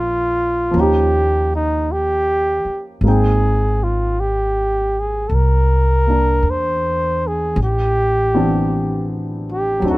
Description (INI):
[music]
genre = jazz ballad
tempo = 53 BPM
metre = 4/4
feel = swing 68% on 8ths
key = unclear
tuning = A4 = 440 Hz
[part]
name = warm flugelhorn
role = melody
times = 0.0-10.0 s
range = Eb4 to C5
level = -18 LUFS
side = equal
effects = none
[part]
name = dark baby grand piano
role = accompaniment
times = 0.0-10.0 s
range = E3 to G5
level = -21 LUFS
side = equal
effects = none
[part]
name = upright bass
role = bass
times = 0.0-10.0 s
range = Ab1 to E2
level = -19 LUFS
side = equal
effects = none
[sound]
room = little or no reverb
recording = close, detailed microphones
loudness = -15 LUFS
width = side -19 dB against mid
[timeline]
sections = 0.0-10.0 A section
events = none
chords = 0.0 Bbm7; 0.7 Eb7; 3.0 Abmaj9; 7.6 Am11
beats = 0.74 1.88 | 3.02 4.16 5.30 6.44 | 7.57 8.70 9.83